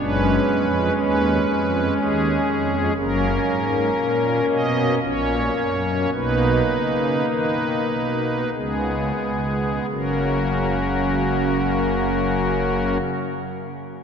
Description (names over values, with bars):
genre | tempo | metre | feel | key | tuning
classical, chorale-style piece for pipe organ | 43-61 BPM | 3/4 | rubato | F# major | A4 = 441 Hz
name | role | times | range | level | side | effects
pipe organ, strings celeste | solo | 0.0-13.0 s | F#1 to D#5 | -19 LUFS | equal | none
room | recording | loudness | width
wet cathedral reverb, RT60 5.1 s | none | -19 LUFS | side -7 dB against mid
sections
0.0-9.9 A section; 9.9-14.0 B section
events
slowing down 1.5-9.9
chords
0.0 C#7/F#; 3.0 F#; 5.0 F#/A#; 6.1 Bmaj7; 8.5 C#5; 9.9 F#